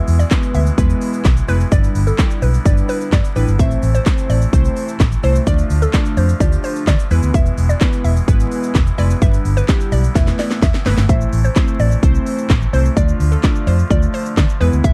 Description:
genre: dance-pop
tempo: 128 BPM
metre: 4/4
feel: straight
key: A minor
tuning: A4 = 441 Hz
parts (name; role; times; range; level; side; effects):
- glassy digital keys; accompaniment; 0.0-14.9 s; G3 to D5; -25 LUFS; equal; chorus, sidechain pumping
- pipe organ, soft reed; sustained chords; 0.0-14.9 s; A2 to F4; -33 LUFS; equal; sidechain pumping
- vintage muted fingered electric bass; bass; 0.1-14.9 s; E1 to D3; -18 LUFS; equal; sidechain pumping
- house drum kit; drums; 0.1-14.9 s; handclaps, hi-hat, kick drum, shaker, snare drum; -18 LUFS; equal; none
- tube shaker; percussion; 0.1-11.1 s; none; -45 LUFS; equal; none
- hollow square pluck; melody; 0.2-14.9 s; A4 to E5; -27 LUFS; equal; chorus, slapback echo
room: little or no reverb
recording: dark, warm production, vinyl crackle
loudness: -15 LUFS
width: mono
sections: 0.0-11.1 A section; 11.1-14.9 A section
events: drop 0.0-11.1, 11.1-14.9; drum fill 10.2-11.1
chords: 0.0 E; 1.7 G6; 3.6 Am; 5.5 Dm; 7.1 E; 9.2 G6; 10.2 Esus4; 11.1 Am; 13.0 Dm

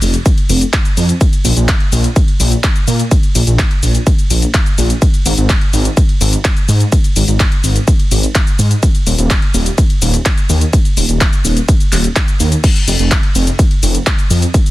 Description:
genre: EDM, festival progressive house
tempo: 126 BPM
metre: 4/4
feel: straight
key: unclear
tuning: A4 = 439 Hz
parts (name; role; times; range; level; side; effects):
- wide detuned saw bass; bass; 0.0-14.5 s; Eb1 to Bb2; -12 LUFS; equal; chorus, sidechain pumping
- big-room dance drum kit; drums; 0.0-14.7 s; crash cymbal, handclaps, hi-hat, ride cymbal, shaker; -18 LUFS; left 1 dB; none
- electronic kick drum; drums; 0.3-14.6 s; none; -12 LUFS; equal; none
room: little or no reverb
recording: dense, heavily limited modern master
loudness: -10 LUFS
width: side -17 dB against mid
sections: 0.0-12.6 A section; 12.6-14.7 A section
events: drop 0.0-12.6, 12.6-14.7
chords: none

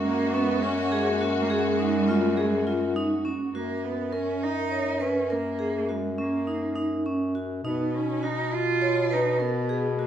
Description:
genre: contemporary instrumental, chamber music in an uneven meter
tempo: 205 BPM (eighths)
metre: 7/8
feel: straight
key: F# major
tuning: A4 = 440 Hz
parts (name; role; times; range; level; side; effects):
- warm cello; melody; 0.0-10.1 s; G#3 to E#4; -29 LUFS; right 4 dB; none
- muted studio string section; sustained chords; 0.0-3.5 s; G#3 to F#4; -31 LUFS; left 2 dB; none
- vibraphone with medium mallets; arpeggios; 0.0-10.1 s; C#4 to C#5; -28 LUFS; equal; none
- clear bass clarinet; bass; 0.0-10.1 s; F#2 to B2; -29 LUFS; left 2 dB; none
room: moderate recital hall reverb, RT60 1.4 s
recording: minimal, uncompressed stereo recording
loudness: -23 LUFS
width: side -10 dB against mid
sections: 0.0-3.5 A section; 3.5-10.1 B section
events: none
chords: 0.0 F#add9; 3.5 F#; 7.6 B

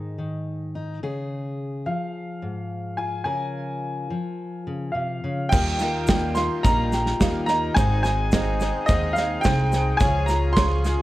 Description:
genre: indie folk with a building arrangement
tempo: 107 BPM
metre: 4/4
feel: straight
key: Ab major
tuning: A4 = 440 Hz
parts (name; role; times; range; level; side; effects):
- clear upright piano; melody; 0.0-11.0 s; Eb5 to C6; -26 LUFS; equal; none
- fingerpicked steel-string acoustic guitar; accompaniment; 0.0-6.0 s; Ab2 to Bb4; -30 LUFS; left 2 dB; none
- bright upright piano; accompaniment; 5.5-11.0 s; Ab1 to F5; -35 LUFS; right 3 dB; none
- picked twelve-string acoustic guitar; accompaniment; 5.5-11.0 s; Ab2 to Ab4; -29 LUFS; left 3 dB; none
- hand-pumped harmonium; sustained chords; 5.5-11.0 s; Db3 to Ab4; -34 LUFS; equal; none
- open-back banjo; arpeggios; 5.5-11.0 s; G4 to Ab5; -33 LUFS; right 4 dB; digital delay
- upright bass; bass; 5.5-10.9 s; Ab1 to Eb2; -25 LUFS; equal; none
- natural country drum kit; drums; 5.5-10.9 s; crash cymbal, kick drum, snare drum; -23 LUFS; right 1 dB; none
- egg shaker; percussion; 5.5-11.0 s; none; -42 LUFS; left 5 dB; none
room: light reverb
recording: worn, warbling old tape, cassette tape, warbly pitch drift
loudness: -21 LUFS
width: side -16 dB against mid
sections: 0.0-5.5 A section; 5.5-11.0 B section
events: none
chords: 0.0 Ab5; 1.0 Db; 3.3 Bbm7/Db; 5.5 Ebadd9; 7.8 Ab; 10.0 Db

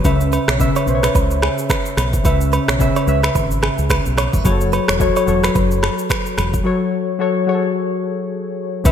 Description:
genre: afrobeats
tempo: 109 BPM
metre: 4/4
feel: swing 58% on 16ths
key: unclear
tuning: A4 = 440 Hz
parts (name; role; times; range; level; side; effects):
- warm analog keys; accompaniment; 0.0-8.9 s; C#3 to E5; -19 LUFS; left 2 dB; chorus
- direct-recorded clean electric guitar; riff; 0.0-6.3 s; G#4 to C#5; -25 LUFS; right 8 dB; spring reverb, digital delay
- fingered electric bass; bass; 0.0-8.9 s; E1 to C#2; -19 LUFS; equal; none
- afro-pop drum kit; drums; 0.0-8.9 s; finger snaps, kick drum, rim click, shaker; -19 LUFS; equal; overdrive
- agogo bells and woodblock; percussion; 0.1-8.9 s; none; -28 LUFS; left 1 dB; none
room: moderate lush hall reverb, RT60 2.1 s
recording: bright 1980s-style digital production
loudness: -15 LUFS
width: side -9 dB against mid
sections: 0.0-8.9 A section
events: break 6.7-8.9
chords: 0.0 C#m7; 4.5 F#m

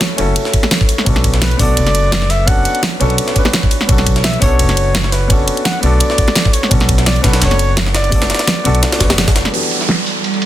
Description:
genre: liquid drum and bass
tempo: 170 BPM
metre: 4/4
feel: swing 54% on 16ths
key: unclear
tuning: A4 = 440 Hz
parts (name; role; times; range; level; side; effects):
- dark grand piano; accompaniment; 0.0-10.5 s; E3 to B4; -20 LUFS; left 1 dB; low-pass filter, dub echo
- jungle sampler-style drum kit; drums; 0.0-10.5 s; hi-hat, ride cymbal, snare drum; -20 LUFS; right 1 dB; high-pass filter on cymbals, low-pass filter on cymbals, high-pass filter on snare, low-pass filter on snare, high-pass filter on hats, low-pass filter on hats, high-pass filter on room, low-pass filter on room
- pop drum kit; drums; 0.0-10.0 s; hi-hat, snare drum; -18 LUFS; equal; low-pass filter on hats, low-pass filter on snare, low-pass filter on cymbals
- upright bass; bass; 0.2-9.4 s; F#1 to B1; -16 LUFS; equal; none
- electronic kick drum; drums; 0.5-9.3 s; none; -14 LUFS; equal; none
- bongos; percussion; 0.6-0.7, 3.5, 6.3-9.2 s; none; -21 LUFS; left 2 dB; none
- warm flugelhorn; melody; 1.4-9.1 s; B4 to F#5; -21 LUFS; equal; ping-pong delay
- warm analog pad; sustained chords; 9.5-10.5 s; G3 to F#5; -21 LUFS; right 7 dB; chorus, sidechain pumping
- downlifter; sound effects; 9.5-10.5 s; none; -18 LUFS; right 3 dB; none
room: digital ambience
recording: dense, heavily limited modern master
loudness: -11 LUFS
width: side -13 dB against mid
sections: 0.0-9.5 A section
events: drop 0.0-9.5; band accent 9.2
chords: 0.0 F#m7; 1.1 Bm9; 9.5 Em11

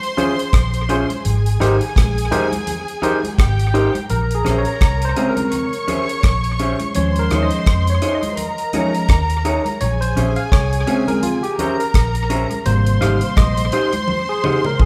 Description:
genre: lovers rock reggae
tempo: 84 BPM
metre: 4/4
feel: swing 57% on 16ths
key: Bb dorian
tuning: A4 = 440 Hz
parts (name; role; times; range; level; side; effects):
- warm studio string section; second line; 0.0-14.9 s; G4 to Db6; -27 LUFS; equal; none
- deep reggae drum kit; drums; 0.0-14.9 s; hi-hat, kick drum, rim click, toms; -21 LUFS; equal; none
- barky tine electric piano; accompaniment; 0.2-14.9 s; C3 to F5; -24 LUFS; equal; overdrive
- electric guitar through a small old amp; stabs; 0.2-14.6 s; Db4 to Db5; -25 LUFS; equal; none
- congas; percussion; 0.2-14.8 s; none; -32 LUFS; equal; none
- vintage muted fingered electric bass; bass; 0.5-14.9 s; Ab1 to F2; -22 LUFS; equal; none
room: moderate large studio reverb, RT60 1.1 s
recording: band playing live in one room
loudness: -18 LUFS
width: mono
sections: 0.0-4.1 A section; 4.1-14.9 B section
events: tine electric piano solo 4.1-14.9; drum fill 14.1-14.9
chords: 0.0 Bbm9; 1.2 Abmaj7; 4.1 Bbm9; 7.0 Eb7sus4; 9.8 Bbm9; 12.7 Abmaj7

